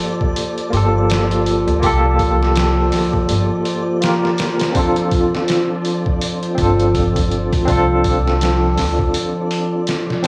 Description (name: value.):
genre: trip hop.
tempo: 82 BPM.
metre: 4/4.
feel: swing 58% on 16ths.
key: G minor.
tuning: A4 = 440 Hz.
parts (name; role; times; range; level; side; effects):
barky tine electric piano; accompaniment; 0.0-10.3 s; Bb3 to Bb4; -21 LUFS; equal; tremolo, tape echo.
warbly tape-like pad; sustained chords; 0.0-10.3 s; F3 to F4; -24 LUFS; equal; chorus, built-in reverb.
trip hop sampler-style drum kit; drums; 0.0-10.3 s; hi-hat, kick drum, snare drum; -24 LUFS; equal; none.
flickering grainy texture; texture; 0.0-10.3 s; D5; -34 LUFS; equal; built-in reverb, subtle chorus.
upright bass; bass; 0.7-9.1 s; G1 to D2; -21 LUFS; equal; none.
room: moderate plate reverb, RT60 2.8 s.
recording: dreamy mix soaked in reverb, studio reverb.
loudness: -17 LUFS.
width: mono.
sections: 0.0-10.3 A section.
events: break 9.1-10.3.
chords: 0.0 Gm9; 4.8 Dm7.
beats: 0.36 1.09 | 1.83 2.56 3.29 4.02 | 4.75 5.48 6.22 6.95 | 7.68 8.41 9.14 9.88.